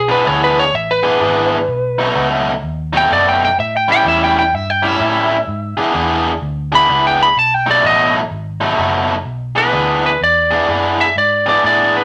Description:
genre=electric blues shuffle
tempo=127 BPM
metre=4/4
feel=swing 65% on 8ths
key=E mixolydian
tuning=A4 = 440 Hz
part: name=lightly driven lead guitar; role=melody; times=0.0-12.0 s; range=G#4 to B5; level=-16 LUFS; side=equal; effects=none
part: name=vintage muted fingered electric bass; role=bass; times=0.0-12.0 s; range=F#1 to A2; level=-27 LUFS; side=equal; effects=none
part: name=overdriven electric guitar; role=riff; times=0.1-12.0 s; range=A2 to G#4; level=-18 LUFS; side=equal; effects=none
room=moderate studio reverb, RT60 0.7 s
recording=none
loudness=-15 LUFS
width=mono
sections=0.0-9.3 A section; 9.3-12.0 B section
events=lead electric guitar solo 0.0-9.3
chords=0.0 E7; 1.7 B7; 3.6 A7; 5.5 E7; 7.4 B7; 9.3 E7

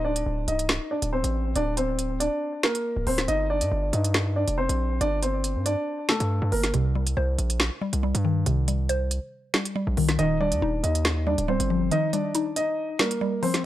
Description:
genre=hip hop, drill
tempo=139 BPM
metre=4/4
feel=half-time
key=unclear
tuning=A4 = 441 Hz
part: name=dark concert grand piano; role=melody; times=0.0-6.7, 10.2-13.6 s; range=A3 to Eb5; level=-26 LUFS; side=equal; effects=tape echo
part: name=hard-hitting 808-style bass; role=bass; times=0.0-11.9 s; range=C1 to G2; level=-26 LUFS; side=equal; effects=none
part: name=drill drum kit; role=drums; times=0.2-13.6 s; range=finger snaps, hi-hat, rim click, snare drum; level=-26 LUFS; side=right 1 dB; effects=none
part: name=mallet-like synth pluck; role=accompaniment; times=6.7-13.6 s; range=C3 to C5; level=-27 LUFS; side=equal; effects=chorus, phaser
room=digital ambience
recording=dry, gritty hardware recording, cassette tape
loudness=-23 LUFS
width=side -13 dB against mid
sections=0.0-13.7 A section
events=kick muted 11.9-13.6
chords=0.0 D5; 3.3 G5; 6.7 Cm; 10.2 Ebadd9

